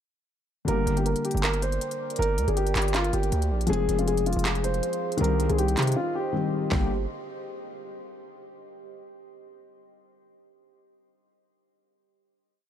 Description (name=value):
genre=hip hop, trap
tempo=159 BPM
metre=4/4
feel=half-time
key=G phrygian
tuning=A4 = 440 Hz
part: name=felt-muted upright piano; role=accompaniment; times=0.6-6.9 s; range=D3 to Ab4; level=-30 LUFS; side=left 4 dB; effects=none
part: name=dark baby grand piano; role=melody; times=0.7-6.9 s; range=F4 to C5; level=-29 LUFS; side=equal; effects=tape echo
part: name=deep dark ambient pad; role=sustained chords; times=1.4-6.9 s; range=G4 to D6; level=-35 LUFS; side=right 1 dB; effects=chorus, built-in reverb
part: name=distorted 808-style bass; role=bass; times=0.7-7.1 s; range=F1 to C3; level=-26 LUFS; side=right 1 dB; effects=distortion
part: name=trap drum kit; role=drums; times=0.7-6.8 s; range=handclaps, hi-hat, kick drum, snare drum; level=-31 LUFS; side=right 1 dB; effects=none
room=digital ambience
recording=dark, warm production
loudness=-23 LUFS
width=side -10 dB against mid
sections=0.7-6.7 hook; 6.7-8.2 final chord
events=break 6.0-6.7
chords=0.7 Gm; 3.7 Fm; 5.2 Cm; 6.7 Gm